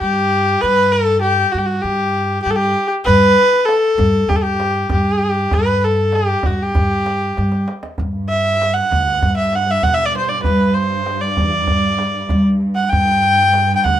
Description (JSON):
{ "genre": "Persian modal ensemble", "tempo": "98 BPM", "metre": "4/4", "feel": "straight", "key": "G dastgah mahur", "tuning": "A4 = 440 Hz", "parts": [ { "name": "clear kamancheh", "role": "melody", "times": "0.0-14.0 s", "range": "F#4 to G5", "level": "-15 LUFS", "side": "equal", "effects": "none" }, { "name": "upright bass", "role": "bass", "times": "0.0-14.0 s", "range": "D2 to G3", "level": "-19 LUFS", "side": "equal", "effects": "none" }, { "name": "tombak", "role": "percussion", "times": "3.1-14.0 s", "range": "none", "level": "-21 LUFS", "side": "equal", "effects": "none" }, { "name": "rich studio cello section", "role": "drone", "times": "8.0-14.0 s", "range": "G2", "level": "-26 LUFS", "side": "right 3 dB", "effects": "none" } ], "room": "moderate studio reverb, RT60 0.7 s", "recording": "minimal, uncompressed stereo recording", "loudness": "-14 LUFS", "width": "side -11 dB against mid", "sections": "0.0-8.0 A section; 8.0-14.0 B section", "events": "drum fill 7.4-8.0", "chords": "none", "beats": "0.00 | 0.61 1.23 1.84 2.45 | 3.07 3.68 4.30 4.91 | 5.53 6.14 6.76 7.37 | 7.99 8.60 9.22 9.84 | 10.45 11.07 11.68 12.30 | 12.91 13.53" }